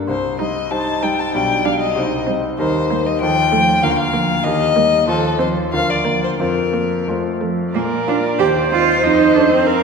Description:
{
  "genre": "quick classical-period movement for piano quartet",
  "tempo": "88-98 BPM",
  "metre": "2/4",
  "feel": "rubato",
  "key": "Bb major",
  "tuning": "A4 = 440 Hz",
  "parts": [
    { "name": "bright concert grand piano", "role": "accompaniment", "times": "0.0-9.8 s", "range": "B1 to D5", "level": "-20 LUFS", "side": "equal", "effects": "none" },
    { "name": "rich violin", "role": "melody", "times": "0.1-9.8 s", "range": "A4 to A5", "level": "-19 LUFS", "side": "left 5 dB", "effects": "none" },
    { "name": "clear cello", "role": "second line", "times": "0.4-9.8 s", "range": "F3 to G4", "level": "-20 LUFS", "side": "right 6 dB", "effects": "none" },
    { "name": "rich viola", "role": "accompaniment", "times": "0.4-9.8 s", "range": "A3 to C5", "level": "-23 LUFS", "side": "right 3 dB", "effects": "none" }
  ],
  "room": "wet scoring stage reverb, RT60 1.8 s",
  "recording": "minimal, uncompressed stereo recording",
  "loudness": "-14 LUFS",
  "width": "side -5 dB against mid",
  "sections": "0.0-7.7 A section; 7.7-9.8 B section",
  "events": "none",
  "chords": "0.1 Cm; 1.3 G/B; 2.0 Cm; 2.6 Cm7/Eb; 3.2 F7/Eb; 3.8 Bb/D; 4.4 Eb; 5.1 F7/Eb; 5.7 Bb/D; 6.4 Fsus4; 7.1 F; 7.7 Bb; 8.4 Cm/Eb; 9.0 F7",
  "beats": "| 0.08 0.71 | 1.34 1.96 | 2.59 3.21 | 3.83 4.45 | 5.08 5.72 | 6.40 7.08 | 7.75 8.39 | 9.03 9.67"
}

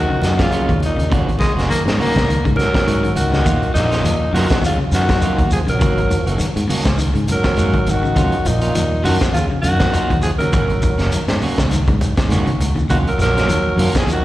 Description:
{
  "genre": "afrobeat",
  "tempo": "102 BPM",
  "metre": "4/4",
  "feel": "swing 55% on 16ths",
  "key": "Eb minor",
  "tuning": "A4 = 440 Hz",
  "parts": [
    { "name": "raspy alto saxophone", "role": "melody", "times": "0.0-14.2 s", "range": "Eb4 to Bb4", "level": "-21 LUFS", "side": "equal", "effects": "slapback echo" },
    { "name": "clear trombone", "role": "second line", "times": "0.0-14.2 s", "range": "Bb2 to Gb3", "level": "-25 LUFS", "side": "right 2 dB", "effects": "slapback echo" },
    { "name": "electric guitar at the edge of break-up", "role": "arpeggios", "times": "0.0-14.2 s", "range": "Bb2 to F3", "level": "-26 LUFS", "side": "left 3 dB", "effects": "lush chorus" },
    { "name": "fingered electric bass", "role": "bass", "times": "0.0-14.2 s", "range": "Gb1 to Ab2", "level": "-19 LUFS", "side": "equal", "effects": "none" },
    { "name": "electric guitar at the edge of break-up", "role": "stabs", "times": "0.1-14.0 s", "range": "Eb3 to Gb4", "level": "-26 LUFS", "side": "right 4 dB", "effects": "slapback echo" },
    { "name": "crunchy breakbeat drum kit", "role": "drums", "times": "0.2-14.2 s", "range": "hi-hat, kick drum, snare drum", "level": "-20 LUFS", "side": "equal", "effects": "none" },
    { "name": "congas", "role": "percussion", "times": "0.2-13.9 s", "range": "none", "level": "-27 LUFS", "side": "right 1 dB", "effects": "none" },
    { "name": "breathy baritone saxophone", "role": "second line", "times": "1.4-2.4 s", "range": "Ab3 to Bb3", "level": "-21 LUFS", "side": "left 1 dB", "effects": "slapback echo" },
    { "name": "shekere", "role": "percussion", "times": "3.5-14.2 s", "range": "none", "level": "-24 LUFS", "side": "equal", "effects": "none" }
  ],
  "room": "little or no reverb",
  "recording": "live gig heard through the venue's PA, recital hall reverb",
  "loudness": "-14 LUFS",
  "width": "side -15 dB against mid",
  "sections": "0.0-14.2 A section",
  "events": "drum fill 11.7-12.9",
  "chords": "0.0 Ebm9; 1.1 Ab9sus4; 3.5 Ebm9; 5.8 Ab9sus4; 8.2 Ebm9; 10.5 Ab9sus4; 12.9 Ebm9",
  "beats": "0.51 | 1.10 1.69 2.28 2.87 | 3.45 4.04 4.63 5.22 | 5.81 6.39 6.98 7.57 | 8.16 8.75 9.34 9.93 | 10.52 11.12 11.71 12.30 | 12.89 13.48 14.08"
}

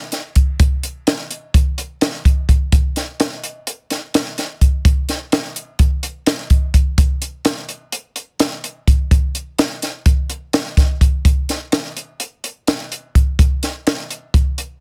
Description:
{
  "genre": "rock",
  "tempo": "253 BPM (eighths)",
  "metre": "9/8",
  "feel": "straight",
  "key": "none",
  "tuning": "none",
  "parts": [
    { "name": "compact cocktail drum kit", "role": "drums", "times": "0.1-14.7 s", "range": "hi-hat, kick drum, snare drum", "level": "-17 LUFS", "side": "equal", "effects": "none" }
  ],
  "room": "little or no reverb",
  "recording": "dense, heavily limited modern master",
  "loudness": "-18 LUFS",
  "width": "mono",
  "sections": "0.0-14.8 A section",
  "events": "none",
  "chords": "none",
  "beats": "0.13 0.37 | 0.60 0.84 1.07 1.31 1.55 1.78 2.02 2.26 2.49 | 2.73 2.96 3.20 3.44 3.67 3.91 4.15 4.38 4.62 | 4.86 5.09 5.33 5.57 5.80 6.04 6.28 6.51 6.75 | 6.99 7.22 7.46 7.70 7.93 8.17 8.41 8.65 8.88 | 9.12 9.36 9.60 9.83 10.07 10.31 10.55 10.78 11.02 | 11.26 11.50 11.73 11.97 12.21 12.45 12.69 12.92 13.16 | 13.40 13.64 13.87 14.11 14.35 14.59"
}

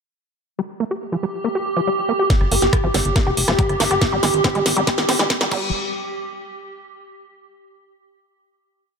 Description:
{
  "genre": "psychedelic trance",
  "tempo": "140 BPM",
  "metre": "4/4",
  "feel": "straight",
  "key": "unclear",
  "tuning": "A4 = 440 Hz",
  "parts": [
    { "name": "swarming drone", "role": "sustained chords", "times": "1.1-5.5 s", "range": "G4", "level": "-22 LUFS", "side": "right 1 dB", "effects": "built-in reverb, sidechain pumping" },
    { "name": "overdriven acid bass", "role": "riff", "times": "0.6-5.7 s", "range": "F3 to G4", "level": "-24 LUFS", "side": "equal", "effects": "auto-pan, sidechain pumping, digital delay" },
    { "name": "drum and bass drum kit", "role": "drums", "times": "2.3-5.6 s", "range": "crash cymbal, hi-hat, rim click, snare drum", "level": "-21 LUFS", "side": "equal", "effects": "none" },
    { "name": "electronic kick drum", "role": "drums", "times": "2.3-5.6 s", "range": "none", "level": "-19 LUFS", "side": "equal", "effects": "none" },
    { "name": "tight sequencer bass", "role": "bass", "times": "2.4-5.7 s", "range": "F1 to Ab1", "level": "-24 LUFS", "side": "equal", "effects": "none" }
  ],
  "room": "moderate lush hall reverb, RT60 1.8 s, digital ambience",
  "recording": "high-pass filter",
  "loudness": "-17 LUFS",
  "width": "side -5 dB against mid",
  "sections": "0.6-2.3 intro; 2.3-5.7 build; 5.7-7.4 final hit",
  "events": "filter sweep on synth drone 0.6-2.3; build-up 2.3-5.7; drum fill 2.3-5.7; filter sweep on acid bass 2.3-5.7; filter sweep 2.3-5.7",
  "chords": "0.6 N.C.; 2.3 Fsus2; 4.0 Abmaj7(no3); 5.5 N.C.",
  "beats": "| 0.59 1.01 1.44 1.87 | 2.30 2.73 3.16 3.59 | 4.01 4.44 4.87 5.30"
}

